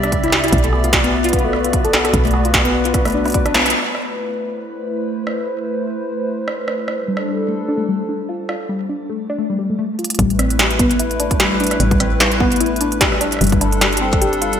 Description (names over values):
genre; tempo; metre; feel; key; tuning
IDM; 149 BPM; 4/4; swing 56% on 16ths; A minor; A4 = 440 Hz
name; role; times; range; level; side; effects
hollow soft pad; sustained chords; 0.0-14.6 s; C3 to E5; -22 LUFS; equal; chorus, shimmer reverb
warbly dusty pluck; arpeggios; 0.0-3.6, 7.1-14.5 s; G3 to D5; -20 LUFS; left 2 dB; chorus, cassette tape, digital delay, shimmer reverb
woody FM bass; bass; 0.0-3.7, 10.2-14.6 s; G1 to C2; -21 LUFS; right 1 dB; none
industrial drum kit; drums; 0.0-14.6 s; hi-hat, rim click, snare drum; -18 LUFS; right 1 dB; gated reverb, digital delay
flickering grainy texture; texture; 0.0-3.8 s; B3 to B5; -33 LUFS; right 1 dB; built-in reverb, wide subtle chorus, shimmer reverb
electronic kick drum; drums; 0.1-3.4, 10.2-14.2 s; none; -20 LUFS; equal; none
room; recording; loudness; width
moderate lush hall reverb, RT60 2.0 s; bright 1980s-style digital production; -15 LUFS; side -8 dB against mid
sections
0.0-3.7 A section; 3.7-10.2 B section; 10.2-14.6 C section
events
drum fill 3.5, 10.0; band accent 3.5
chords
0.0 Cmaj9; 0.5 Bm; 3.7 Amadd9; 7.0 Gsus4; 10.2 Asus2; 13.4 Gsus2